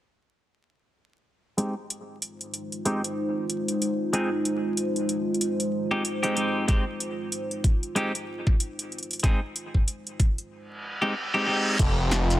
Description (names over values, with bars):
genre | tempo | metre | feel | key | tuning
glitch hop | 94 BPM | 4/4 | swing 59% on 16ths | F minor | A4 = 439 Hz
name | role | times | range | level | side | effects
dark analog pad | sustained chords | 2.4-12.4 s | Ab3 to C5 | -29 LUFS | equal | chorus, phaser, sidechain pumping
clean electric guitar | stabs | 1.6-11.8 s | Ab3 to Ab4 | -28 LUFS | equal | sidechain pumping, low-pass filter, dub echo
drum and bass drum kit | drums | 1.6-12.4 s | crash cymbal, hi-hat, snare drum | -30 LUFS | equal | none
electronic kick drum | drums | 6.7-11.9 s | none | -22 LUFS | equal | none
reverse cymbal | sound effects | 10.8-11.8 s | none | -30 LUFS | right 1 dB | none
phased detuned saw bass | bass | 11.8-12.4 s | F1 | -22 LUFS | equal | phaser
shekere | percussion | 11.8-12.4 s | none | -35 LUFS | left 2 dB | none
room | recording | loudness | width
light reverb | vinyl crackle | -24 LUFS | side -14 dB against mid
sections
1.6-11.8 A section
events
filter sweep on clean electric guitar 1.6-11.8; reverse cymbal 10.8-11.8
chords
1.6 Fm7